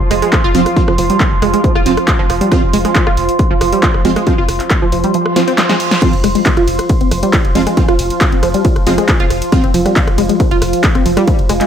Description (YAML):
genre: driving peak-time techno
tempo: 137 BPM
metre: 4/4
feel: straight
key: unclear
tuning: A4 = 440 Hz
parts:
  - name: saturated sub bass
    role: bass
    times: 0.0-11.6 s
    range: F1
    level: -20 LUFS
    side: equal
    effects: tube saturation, sidechain pumping, low-pass filter
  - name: deep dark ambient pad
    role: drone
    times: 0.0-11.7 s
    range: F3 to F4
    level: -20 LUFS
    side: right 1 dB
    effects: chorus, built-in reverb, sidechain pumping
  - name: deep dark ambient pad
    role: texture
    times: 0.0-11.7 s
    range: C6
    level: -22 LUFS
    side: right 2 dB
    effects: chorus, built-in reverb, sidechain pumping
  - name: tight sequenced synth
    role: riff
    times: 0.1-11.7 s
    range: F3 to F4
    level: -17 LUFS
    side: equal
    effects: chorus, tube saturation, sidechain pumping, ping-pong delay
  - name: punchy analog drum machine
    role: drums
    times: 0.1-11.7 s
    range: crash cymbal, handclaps, hi-hat, ride cymbal, rim click, snare drum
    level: -18 LUFS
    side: equal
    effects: overdrive
  - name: electronic kick drum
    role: drums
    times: 0.3-11.4 s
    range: none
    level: -14 LUFS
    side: equal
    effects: none
  - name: rave stab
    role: stabs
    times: 0.5-9.6 s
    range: F3 to F4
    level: -18 LUFS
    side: right 3 dB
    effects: chorus, built-in reverb, sidechain pumping, tape echo
  - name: reverse cymbal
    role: sound effects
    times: 5.3-6.0 s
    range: none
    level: -25 LUFS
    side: right 6 dB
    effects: none
room: light reverb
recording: none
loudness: -10 LUFS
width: side -8 dB against mid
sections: 0.0-11.7 A section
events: reverse cymbal 5.3-6.0; drum fill 5.4-6.0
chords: 0.0 F5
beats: 0.33 | 0.77 1.20 1.64 2.08 | 2.52 2.96 3.39 3.83 | 4.27 4.71 5.14 5.58 | 6.02 6.46 6.90 7.33 | 7.77 8.21 8.65 9.09 | 9.52 9.96 10.40 10.84 | 11.28